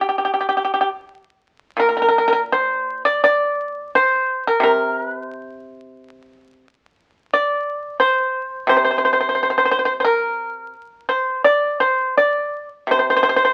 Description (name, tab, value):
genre	chinese traditional, Chinese solo plucked strings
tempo	86 BPM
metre	4/4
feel	uneven beats, rubato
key	unclear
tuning	A4 = 439 Hz
part	pipa	solo	0.0-13.5 s	Bb2 to D5	-18 LUFS	equal	none
room	moderate studio reverb, RT60 0.8 s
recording	very old 78 rpm record, vinyl crackle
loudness	-19 LUFS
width	mono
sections	0.0-1.8 A section; 1.8-13.5 B section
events	none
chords	none